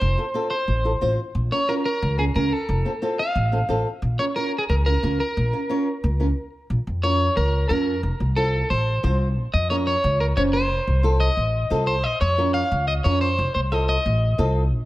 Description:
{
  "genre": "latin",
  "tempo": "180 BPM",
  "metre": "4/4",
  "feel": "straight",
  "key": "Bb harmonic minor",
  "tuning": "A4 = 445 Hz",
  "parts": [
    { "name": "electric guitar at the edge of break-up", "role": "melody", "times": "0.0-14.5 s", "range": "Ab4 to F5", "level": "-24 LUFS", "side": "equal", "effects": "spring reverb" },
    { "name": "upright bass", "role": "bass", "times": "0.0-14.8 s", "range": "F1 to F2", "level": "-22 LUFS", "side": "equal", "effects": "none" },
    { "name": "nylon-string guitar", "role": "accompaniment", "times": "0.2-14.6 s", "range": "C4 to Db5", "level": "-26 LUFS", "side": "equal", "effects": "none" }
  ],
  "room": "light reverb",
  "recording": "none",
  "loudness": "-20 LUFS",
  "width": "side -16 dB against mid",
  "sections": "0.0-6.7 A section; 6.7-14.9 B section",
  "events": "stop 6.4-6.7",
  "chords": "0.0 F; 1.4 Bbm; 2.7 F; 4.0 Bbm; 8.0 F; 9.4 Bbm; 10.7 F7; 12.0 Bbm; 13.4 F7"
}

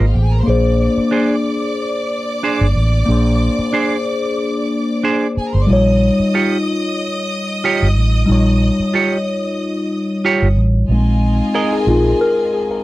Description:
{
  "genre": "soul",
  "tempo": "92 BPM",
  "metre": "4/4",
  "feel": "swing 54% on 16ths",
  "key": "unclear",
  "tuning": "A4 = 440 Hz",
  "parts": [
    { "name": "clear studio violin section", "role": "second line", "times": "0.0-12.8 s", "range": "F4 to Eb6", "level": "-25 LUFS", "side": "equal", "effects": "none" },
    { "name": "mellow tine electric piano", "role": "accompaniment", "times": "0.0-12.8 s", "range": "G3 to Db5", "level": "-17 LUFS", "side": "left 2 dB", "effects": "phaser" },
    { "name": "semi-hollow electric guitar", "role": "riff", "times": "0.0-11.8 s", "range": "D4 to Eb5", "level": "-16 LUFS", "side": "right 4 dB", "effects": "none" },
    { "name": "vintage muted fingered electric bass", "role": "bass", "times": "0.0-12.1 s", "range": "G1 to Bb1", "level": "-14 LUFS", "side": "right 1 dB", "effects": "none" }
  ],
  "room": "little or no reverb",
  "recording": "dry, close 1970s-style studio recording",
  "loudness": "-14 LUFS",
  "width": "side -17 dB against mid",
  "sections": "0.0-10.9 A section; 10.9-12.8 B section",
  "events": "tine electric piano solo 10.9-12.8",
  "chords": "0.5 Bb9; 5.7 Eb9; 10.9 Bb7sus4"
}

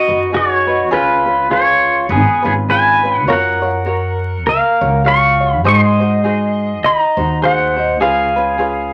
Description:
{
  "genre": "Hawaiian",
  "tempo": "102 BPM",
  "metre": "4/4",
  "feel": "swing 59% on 8ths",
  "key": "F# major",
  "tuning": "A4 = 440 Hz",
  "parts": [
    { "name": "pedal steel guitar", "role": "melody", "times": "0.0-8.9 s", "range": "B3 to C#6", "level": "-16 LUFS", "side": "equal", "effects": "none" },
    { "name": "tenor ukulele", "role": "accompaniment", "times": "0.0-8.9 s", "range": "C#4 to C#5", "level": "-22 LUFS", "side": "equal", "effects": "none" },
    { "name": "upright bass", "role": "bass", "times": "0.1-8.9 s", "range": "G#1 to G#2", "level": "-21 LUFS", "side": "equal", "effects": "none" }
  ],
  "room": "moderate studio reverb, RT60 0.8 s",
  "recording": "vinyl crackle",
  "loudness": "-14 LUFS",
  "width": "mono",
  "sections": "0.0-8.9 A section",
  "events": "none",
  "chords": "0.0 B6; 0.9 C#7; 3.3 F#maj7; 5.6 G#7; 8.0 C#7"
}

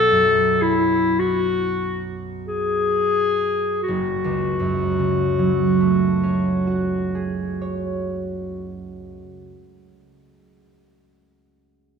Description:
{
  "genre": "classical, impressionist duo for clarinet and harp",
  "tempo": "41-57 BPM",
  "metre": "4/4",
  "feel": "rubato",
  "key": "F# minor",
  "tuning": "A4 = 440 Hz",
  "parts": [
    { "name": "clear clarinet", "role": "melody", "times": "0.0-8.7 s", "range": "E4 to A4", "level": "-20 LUFS", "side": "left 4 dB", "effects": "none" },
    { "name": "concert harp", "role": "accompaniment", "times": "0.0-10.4 s", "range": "F#1 to C#5", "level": "-23 LUFS", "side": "right 4 dB", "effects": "none" }
  ],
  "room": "wet concert hall reverb, RT60 1.7 s",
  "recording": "recorded in a church or concert hall",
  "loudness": "-18 LUFS",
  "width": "side -6 dB against mid",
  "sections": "0.0-3.9 A section; 3.9-8.9 B section",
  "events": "slowing down 0.0-3.9",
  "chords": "0.0 B5; 3.9 F#madd9"
}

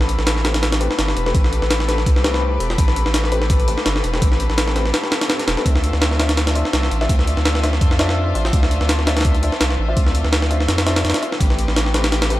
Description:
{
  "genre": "drum and bass, jungle",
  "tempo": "167 BPM",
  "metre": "4/4",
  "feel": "swing 54% on 16ths",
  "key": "A minor",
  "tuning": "A4 = 441 Hz",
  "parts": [
    { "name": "rich studio string section", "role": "sustained chords", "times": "0.0-12.4 s", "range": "A3 to E5", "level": "-26 LUFS", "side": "left 2 dB", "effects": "vintage 12-bit sampler grit" },
    { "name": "saturated sub bass", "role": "bass", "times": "0.0-12.4 s", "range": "E1 to F2", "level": "-20 LUFS", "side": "equal", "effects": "none" },
    { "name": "breakbeat sampler-style drum kit", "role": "drums", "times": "0.0-12.4 s", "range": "hi-hat, kick drum, snare drum", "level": "-18 LUFS", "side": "equal", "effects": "none" },
    { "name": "clear grand piano", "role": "stabs", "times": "0.4-12.4 s", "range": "A3 to E5", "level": "-28 LUFS", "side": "left 2 dB", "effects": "dub echo" },
    { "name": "crunchy breakbeat drum kit", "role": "drums", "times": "11.4-12.4 s", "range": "none", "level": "barely audible", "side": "none", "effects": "none" }
  ],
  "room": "studio reverb",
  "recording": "dry, gritty hardware recording",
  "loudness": "-15 LUFS",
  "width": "side -16 dB against mid",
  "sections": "0.0-12.4 A section",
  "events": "none",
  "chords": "0.0 Am9; 5.7 Dm9; 11.4 Am9"
}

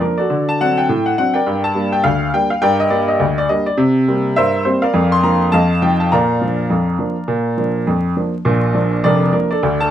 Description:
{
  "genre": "ragtime piano",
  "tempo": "103 BPM",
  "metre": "2/4",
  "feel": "swing 59% on 16ths",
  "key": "Bb major",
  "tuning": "A4 = 441 Hz",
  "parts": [
    { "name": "clear upright piano", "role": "solo", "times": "0.0-9.9 s", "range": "F1 to C6", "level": "-14 LUFS", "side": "equal", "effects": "none" }
  ],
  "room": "light reverb",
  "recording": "dark, warm production, vinyl crackle",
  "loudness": "-14 LUFS",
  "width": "side -10 dB against mid",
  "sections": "0.0-8.5 A section; 8.5-9.9 A section",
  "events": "none",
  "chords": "0.3 D7; 1.5 Gm; 3.8 C5; 5.0 Bb/F; 5.5 F7; 6.1 Bb"
}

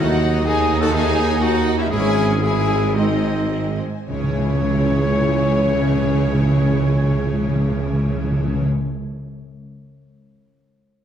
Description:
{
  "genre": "cinematic, heroic adventure film score",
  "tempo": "103-128 BPM",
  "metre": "4/4",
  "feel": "straight",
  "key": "C# minor",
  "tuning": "A4 = 441 Hz",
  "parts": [
    { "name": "rich symphonic violin section", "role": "melody", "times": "0.0-8.7 s", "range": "C#5 to A5", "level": "-32 LUFS", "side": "left 4 dB", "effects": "none" },
    { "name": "clear clarinet", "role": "second line", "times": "0.0-8.6 s", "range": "D#4 to C#5", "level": "-29 LUFS", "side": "left 2 dB", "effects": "none" },
    { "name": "hollow small flute group", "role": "second line", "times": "0.0-8.6 s", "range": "C#5 to A5", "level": "-30 LUFS", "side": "right 1 dB", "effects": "none" },
    { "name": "rich symphonic violin section", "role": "second line", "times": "0.0-8.6 s", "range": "G#4 to A5", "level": "-35 LUFS", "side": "left 4 dB", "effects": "none" },
    { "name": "rich symphonic viola section", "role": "accompaniment", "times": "0.0-8.7 s", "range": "F#3 to G#4", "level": "-28 LUFS", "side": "right 2 dB", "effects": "none" },
    { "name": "dark French horn section", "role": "sustained chords", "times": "0.0-8.6 s", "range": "C#4 to A4", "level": "-26 LUFS", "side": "left 4 dB", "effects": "none" },
    { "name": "warm trombone section", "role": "sustained chords", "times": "0.0-8.6 s", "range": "D#3 to C#4", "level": "-32 LUFS", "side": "right 2 dB", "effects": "none" },
    { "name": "concert harp", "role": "arpeggios", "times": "0.0-9.0 s", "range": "G#2 to E5", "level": "-32 LUFS", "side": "left 8 dB", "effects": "none" },
    { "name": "clear trumpet section", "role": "stabs", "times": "0.0-8.6 s", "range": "B#3 to C#5", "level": "-28 LUFS", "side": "equal", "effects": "none" },
    { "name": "bright symphonic cello section", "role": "bass", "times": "0.0-8.6 s", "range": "D#2 to C#3", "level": "-25 LUFS", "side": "right 3 dB", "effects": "none" },
    { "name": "rich symphonic double bass section", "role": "bass", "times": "0.0-8.6 s", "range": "G#1 to D#2", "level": "-24 LUFS", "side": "right 3 dB", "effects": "none" },
    { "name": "warm tuba", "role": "bass", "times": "0.0-8.6 s", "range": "G#1 to D#2", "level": "-25 LUFS", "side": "right 3 dB", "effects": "none" },
    { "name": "timpani", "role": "percussion", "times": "4.1-8.7 s", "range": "C#3", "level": "-22 LUFS", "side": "left 2 dB", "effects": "none" }
  ],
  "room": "wet scoring stage reverb, RT60 1.6 s",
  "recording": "dark, warm production",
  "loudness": "-16 LUFS",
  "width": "side -9 dB against mid",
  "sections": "0.0-4.1 A section; 4.1-8.7 B section",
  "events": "slowing down 0.0-4.1",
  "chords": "0.0 D#dim; 1.9 C#m/G#; 3.0 G#; 4.1 C#m"
}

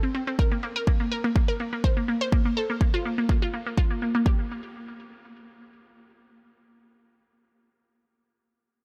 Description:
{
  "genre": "progressive house",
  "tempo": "124 BPM",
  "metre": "4/4",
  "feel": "straight",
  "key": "G minor",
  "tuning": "A4 = 440 Hz",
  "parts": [
    { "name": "glassy wavetable pluck", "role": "arpeggios", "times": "0.0-7.9 s", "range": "Bb3 to C5", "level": "-30 LUFS", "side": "equal", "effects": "chorus, sidechain pumping, delay" },
    { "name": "electronic hi-hat", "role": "drums", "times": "0.0-4.2 s", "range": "none", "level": "-55 LUFS", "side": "equal", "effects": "none" },
    { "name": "electronic kick drum", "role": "drums", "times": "0.4-4.4 s", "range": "none", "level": "-25 LUFS", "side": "equal", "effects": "studio reverb" }
  ],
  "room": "light reverb, small room ambience",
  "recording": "none",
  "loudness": "-25 LUFS",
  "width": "mono",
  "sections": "0.0-4.3 A section; 4.3-8.1 B section",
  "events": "none",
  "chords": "none"
}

